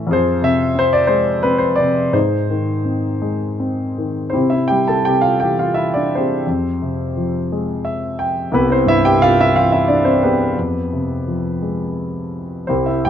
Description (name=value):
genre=classical, lyrical solo piano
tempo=78-90 BPM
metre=3/4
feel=rubato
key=unclear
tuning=A4 = 440 Hz
part: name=warm concert grand piano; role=solo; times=0.0-13.1 s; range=C2 to A5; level=-15 LUFS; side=equal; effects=none
room=light reverb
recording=close, detailed microphones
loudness=-15 LUFS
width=side -9 dB against mid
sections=0.0-4.3 A section; 4.3-13.1 B section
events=grand piano fill 7.5-8.5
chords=0.1 Fm; 2.1 Ab; 4.3 C; 6.5 Fmadd9; 8.5 C; 10.6 Fmadd9